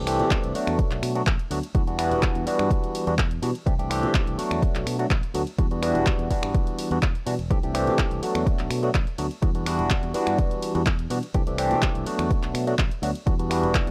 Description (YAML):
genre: filtered disco house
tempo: 125 BPM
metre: 4/4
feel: straight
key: E minor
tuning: A4 = 440 Hz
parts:
  - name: barky tine electric piano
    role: accompaniment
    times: 0.0-13.9 s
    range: E3 to G4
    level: -28 LUFS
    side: equal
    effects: phaser, vintage 12-bit sampler grit, sidechain pumping
  - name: fingered electric bass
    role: bass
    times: 0.0-13.9 s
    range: E1 to C3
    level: -31 LUFS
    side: equal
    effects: sidechain pumping
  - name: punchy analog drum machine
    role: drums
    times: 0.1-13.9 s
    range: finger snaps, handclaps, hi-hat, ride cymbal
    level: -34 LUFS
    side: equal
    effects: overdrive, sidechain pumping on hats, sidechain pumping on cymbals
  - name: electronic kick drum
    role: drums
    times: 0.3-13.8 s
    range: none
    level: -26 LUFS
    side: equal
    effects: overdrive
room: little or no reverb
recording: dry, gritty hardware recording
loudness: -24 LUFS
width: mono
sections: 0.0-13.9 A section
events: none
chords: 0.0 C6; 0.8 Bm7; 1.7 Em9; 3.7 C6; 4.6 Bm7; 5.6 Em9; 7.5 C6; 8.5 Bm7; 9.4 Em9; 11.3 C6; 12.3 Bm7; 13.3 Em9